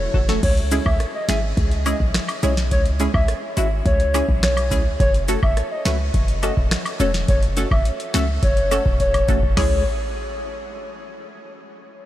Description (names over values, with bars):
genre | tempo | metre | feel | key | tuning
dancehall | 105 BPM | 4/4 | straight | C# minor | A4 = 440 Hz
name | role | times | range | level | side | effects
hollow clarinet-like synth lead | melody | 0.0-9.8 s | C#5 to E5 | -25 LUFS | left 1 dB | chorus, tape echo
warm 808-style bass | bass | 0.0-9.8 s | E1 to C#2 | -21 LUFS | equal | none
punchy chord stab | accompaniment | 0.1-9.8 s | G#3 to B4 | -27 LUFS | right 1 dB | chorus, phaser
booming analog drum machine | drums | 0.1-9.7 s | crash cymbal, finger snaps, hi-hat, kick drum, rim click, snare drum | -22 LUFS | equal | none
cabasa and woodblock | percussion | 0.7-9.8 s | none | -34 LUFS | left 2 dB | none
room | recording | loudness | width
light reverb | none | -17 LUFS | side -14 dB against mid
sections
0.4-9.6 A section; 9.6-11.9 B section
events
drum fill 9.0-9.6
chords
0.4 C#m; 5.0 F#m; 9.6 C#m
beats
| 0.43 1.00 1.57 2.14 | 2.71 3.29 3.86 4.43 | 5.00 5.57 6.14 6.71 | 7.29 7.86 8.43 9.00 | 9.57